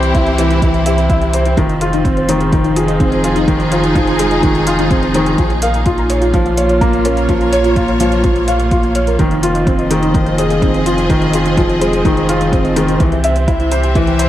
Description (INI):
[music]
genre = piano and strings electronica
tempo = 126 BPM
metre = 4/4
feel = straight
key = F minor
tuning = A4 = 440 Hz
[part]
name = rich symphonic string section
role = sustained chords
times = 0.0-14.3 s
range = Bb2 to E5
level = -19 LUFS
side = right 1 dB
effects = none
[part]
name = soft round pluck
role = arpeggios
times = 0.0-14.2 s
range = Eb4 to F6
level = -22 LUFS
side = left 2 dB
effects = ensemble chorus, sidechain pumping, tape echo
[part]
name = felt-muted upright piano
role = riff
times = 0.0-14.3 s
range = Eb3 to F5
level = -15 LUFS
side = equal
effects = tape echo
[part]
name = warm sub bass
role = bass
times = 0.0-14.3 s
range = F1 to C2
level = -19 LUFS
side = equal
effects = sidechain pumping
[part]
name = electronic hi-hat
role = drums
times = 0.0-14.3 s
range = none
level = -28 LUFS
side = equal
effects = overdrive
[part]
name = electronic kick drum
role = drums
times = 0.1-14.1 s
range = none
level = -16 LUFS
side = equal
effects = overdrive
[sound]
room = moderate recital hall reverb, RT60 1.9 s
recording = none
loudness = -11 LUFS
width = side -12 dB against mid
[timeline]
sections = 0.0-14.3 A section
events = none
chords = 0.0 C; 1.6 Fm7; 5.4 Bbm; 9.2 Fm7; 13.0 C